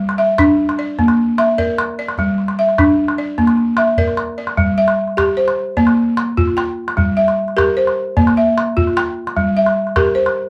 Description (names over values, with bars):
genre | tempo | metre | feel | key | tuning
west african traditional, West African string and xylophone music | 100 BPM (dotted quarters) | 12/8 | straight | G dorian | A4 = 440 Hz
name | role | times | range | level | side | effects
balafon | arpeggios | 0.0-10.5 s | G3 to G5 | -17 LUFS | equal | none
calabash | percussion | 0.1-10.4 s | none | -22 LUFS | equal | none
room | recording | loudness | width
wet small room reverb, RT60 0.5 s | heard from further back in the room | -16 LUFS | mono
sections
0.0-4.6 A section; 4.6-10.5 B section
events
none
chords
0.0 G5; 1.0 Bb; 2.2 G5; 3.4 Bb; 4.6 G5; 5.8 Bb; 7.0 Gm; 8.2 Bb; 9.4 Gm